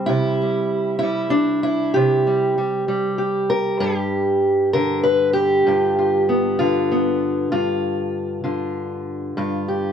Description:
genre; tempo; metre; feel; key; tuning
acoustic country blues, solo or duo; 65 BPM (dotted quarters); 12/8; straight; G mixolydian; A4 = 441 Hz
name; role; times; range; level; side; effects
fingerpicked steel-string acoustic guitar; solo; 0.0-9.9 s; G2 to B4; -18 LUFS; equal; none
room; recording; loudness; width
moderate studio ambience, RT60 0.5 s; none; -18 LUFS; side -8 dB against mid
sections
0.0-9.9 A section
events
none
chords
0.0 C; 3.8 G7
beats
| 0.09 1.02 1.95 2.88 | 3.81 4.74 5.67 6.59 | 7.52 8.45 9.37

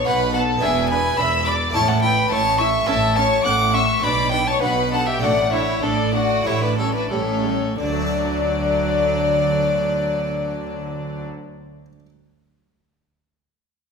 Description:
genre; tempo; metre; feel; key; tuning
classical, baroque-style concerto movement with solo episodes; 88-107 BPM; 4/4; straight; D major; A4 = 440 Hz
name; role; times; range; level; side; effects
warm studio violin section; melody; 0.0-11.3 s; C#5 to F#6; -27 LUFS; left 4 dB; none
rich chamber violin section; second line; 0.0-11.3 s; C#4 to F#5; -25 LUFS; left 1 dB; none
harpsichord; accompaniment; 0.0-12.1 s; E2 to A4; -30 LUFS; right 2 dB; none
warm violin; melody; 0.1-11.3 s; A4 to D6; -22 LUFS; left 2 dB; none
dark chamber viola section; accompaniment; 0.1-11.3 s; F#3 to E4; -30 LUFS; right 1 dB; none
rich chamber double bass section; bass; 0.1-11.3 s; E1 to D2; -27 LUFS; right 4 dB; none
rich studio cello section; bass; 0.1-11.3 s; E2 to D3; -26 LUFS; right 2 dB; none
room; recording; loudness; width
wet recital hall reverb, RT60 1.6 s; recorded in a church or concert hall; -17 LUFS; side -5 dB against mid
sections
0.0-7.8 A section; 7.8-10.5 B section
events
slowing down 1.7-7.8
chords
0.0 Bm; 0.6 E5; 1.7 A; 4.0 Bm; 5.2 D5/A; 6.5 A7; 7.8 D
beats
0.06 | 0.62 1.18 1.75 2.31 | 2.88 3.45 4.03 4.62 | 5.22 5.83 6.46 7.11 | 7.79 8.47 9.14 9.82

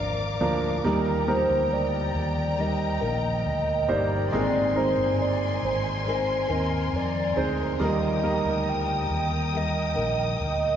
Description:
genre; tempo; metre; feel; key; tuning
pop ballad; 69 BPM; 4/4; straight; Eb major; A4 = 441 Hz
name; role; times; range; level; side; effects
hollow clarinet-like synth lead; melody; 0.0-10.8 s; Bb4 to G5; -27 LUFS; equal; chorus, phaser
warm grand piano; accompaniment; 0.0-10.8 s; Bb2 to C5; -30 LUFS; right 3 dB; none
warm studio string section; sustained chords; 0.0-10.8 s; Bb4 to Eb6; -32 LUFS; left 2 dB; none
nylon-string guitar; arpeggios; 0.0-10.8 s; G3 to Bb4; -32 LUFS; equal; none
mellow fretless electric bass; bass; 0.0-10.8 s; G1 to F2; -29 LUFS; left 1 dB; none
room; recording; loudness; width
wet cathedral reverb, RT60 5.3 s; recorded in a church or concert hall, nothing above 7.7 kHz; -23 LUFS; side -9 dB against mid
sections
0.0-10.8 A section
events
none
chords
0.0 Bb; 0.8 Eb; 4.3 Abadd9; 7.8 Eb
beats
| 0.84 1.71 2.58 3.45 | 4.32 5.19 6.06 6.93 | 7.80 8.67 9.54 10.41

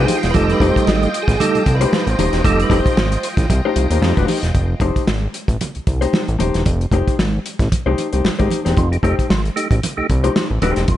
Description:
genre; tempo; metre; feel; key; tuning
funk; 114 BPM; 4/4; swing 56% on 16ths; F mixolydian; A4 = 440 Hz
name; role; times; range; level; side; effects
mellow electric guitar; accompaniment; 0.0-10.8 s; A3 to C5; -21 LUFS; left 5 dB; none
soft string machine; sustained chords; 0.0-4.5 s; F4 to G5; -26 LUFS; equal; phaser, ensemble chorus
percussive tonewheel organ; stabs; 0.0-3.3, 8.8-11.0 s; F3 to Eb5; -20 LUFS; right 3 dB; overdrive, chorus vibrato, fast rotary speaker
fat analog bass; bass; 0.0-11.0 s; Eb1 to F2; -18 LUFS; equal; none
warm soul drum kit; drums; 0.1-11.0 s; hi-hat, kick drum, snare drum; -20 LUFS; equal; none
congas; percussion; 0.1-11.0 s; none; -26 LUFS; right 4 dB; none
room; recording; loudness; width
light reverb; nothing above 10.8 kHz; -14 LUFS; side -12 dB against mid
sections
0.0-4.5 A section; 4.5-11.0 B section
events
tonewheel organ solo 0.0-4.5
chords
0.0 F9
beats
| 0.34 0.87 1.39 1.92 | 2.44 2.97 3.49 4.02 | 4.55 5.07 5.60 6.13 | 6.66 7.19 7.71 8.24 | 8.77 9.30 9.83 10.36 | 10.88

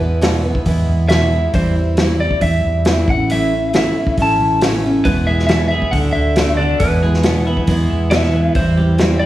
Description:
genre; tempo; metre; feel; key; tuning
folk rock and heartland rock; 137 BPM; 4/4; straight; E major; A4 = 439 Hz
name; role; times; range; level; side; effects
lightly driven lead guitar; melody; 0.0-9.3 s; B4 to A5; -20 LUFS; equal; none
picked steel-string acoustic guitar; accompaniment; 0.0-9.3 s; E2 to F#4; -19 LUFS; left 1 dB; none
hollow-body short-scale fingered electric bass; bass; 0.0-9.3 s; E1 to E2; -18 LUFS; equal; none
vintage drum kit; drums; 0.2-9.1 s; hi-hat, kick drum, snare drum; -19 LUFS; equal; none
twelve-string electric guitar; riff; 5.1-9.3 s; E2 to G#4; -20 LUFS; right 2 dB; none
room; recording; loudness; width
moderate spring reverb, RT60 1.6 s, small room ambience; studio reverb; -13 LUFS; side -14 dB against mid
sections
0.0-9.3 A section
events
none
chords
0.0 E; 1.5 C/E; 3.1 A; 5.1 E; 5.9 D; 6.8 E; 8.6 C/E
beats
0.23 0.66 1.10 | 1.54 1.98 2.42 2.86 | 3.30 3.74 4.18 4.62 | 5.06 5.49 5.93 6.37 | 6.81 7.25 7.68 8.12 | 8.56 8.99

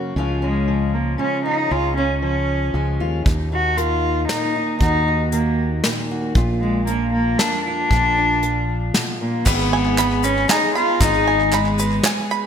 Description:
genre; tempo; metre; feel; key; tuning
indie folk with a building arrangement; 116 BPM; 3/4; straight; unclear; A4 = 440 Hz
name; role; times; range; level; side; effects
fingerpicked steel-string acoustic guitar; accompaniment; 0.0-9.5 s; Eb2 to Gb4; -25 LUFS; left 1 dB; wide subtle chorus
fingered electric bass; bass; 0.2-12.0 s; Ab1 to Eb2; -23 LUFS; equal; none
warm cello; melody; 0.4-12.3 s; Ab3 to Gb4; -20 LUFS; equal; none
soft brush drum kit; drums; 3.3-12.2 s; crash cymbal, hi-hat, kick drum, snare drum; -21 LUFS; equal; gated reverb
picked twelve-string acoustic guitar; accompaniment; 9.5-12.5 s; Ab2 to Ab4; -25 LUFS; left 5 dB; lush chorus
bluegrass banjo; arpeggios; 9.5-12.5 s; Cb5 to Cb6; -24 LUFS; right 7 dB; digital delay
group handclap; percussion; 9.5-12.2 s; none; -28 LUFS; right 4 dB; none
tube shaker; percussion; 9.5-12.4 s; none; -32 LUFS; left 13 dB; none
room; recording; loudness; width
moderate lush hall reverb, RT60 2.2 s; bright 1980s-style digital production; -17 LUFS; side -8 dB against mid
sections
0.0-9.5 A section; 9.5-12.5 B section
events
none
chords
0.2 Db; 3.3 Ebm; 6.4 Bb; 9.5 Abm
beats
| 0.17 0.68 1.20 | 1.71 2.23 2.75 | 3.26 3.78 4.29 | 4.81 5.33 5.84 | 6.36 6.88 7.39 | 7.91 8.43 8.95 | 9.46 9.98 10.49 | 11.01 11.52 12.04

